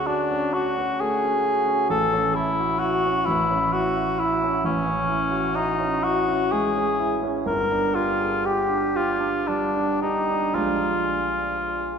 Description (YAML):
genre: classical, impressionist duo for cor anglais and grand piano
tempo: 36-45 BPM (dotted quarters)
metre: 6/8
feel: rubato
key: unclear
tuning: A4 = 440 Hz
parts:
  - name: mellow cor anglais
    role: melody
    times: 0.0-12.0 s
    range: C#4 to Bb4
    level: -22 LUFS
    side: left 2 dB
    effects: none
  - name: clear concert grand piano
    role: accompaniment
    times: 0.0-12.0 s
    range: G1 to G#4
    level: -26 LUFS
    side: right 3 dB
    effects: none
room: wet concert hall reverb, RT60 2.2 s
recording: minimal, uncompressed stereo recording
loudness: -20 LUFS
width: side -6 dB against mid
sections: 0.0-12.0 A section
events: none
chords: 0.0 Dmaj7; 1.9 A6; 4.6 Amaj7; 7.5 G5; 10.6 Bb6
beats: 0.54 | 1.90 3.25 | 4.64 6.03 | 7.47 8.95 | 10.57